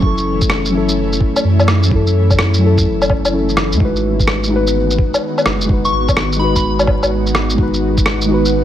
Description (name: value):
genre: future garage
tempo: 127 BPM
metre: 4/4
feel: swing 66% on 16ths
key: unclear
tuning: A4 = 440 Hz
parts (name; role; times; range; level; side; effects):
- soft synth bell; melody; 0.0-0.2, 5.8-6.6 s; B5 to C#6; -22 LUFS; left 2 dB; chorus, phaser, ping-pong delay
- muted felt-like synth keys; accompaniment; 0.0-8.6 s; F#3 to B4; -18 LUFS; left 1 dB; chorus, sidechain pumping, ping-pong delay
- ethereal airy pad; sustained chords; 0.0-8.6 s; D#3 to F#4; -22 LUFS; right 1 dB; ensemble chorus, built-in reverb, sidechain pumping
- soft dub sub bass; bass; 0.0-8.6 s; F#1 to F#2; -17 LUFS; equal; sidechain pumping
- electronic kick drum; drums; 0.0-8.0 s; none; -17 LUFS; equal; none
- electronic shaker, rim click and woodblock; drums; 0.2-8.5 s; none; -18 LUFS; equal; none
room: light reverb, digital ambience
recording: vinyl crackle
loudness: -12 LUFS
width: side -11 dB against mid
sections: 0.0-8.6 A section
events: none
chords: 0.0 F#m7; 3.8 G#m7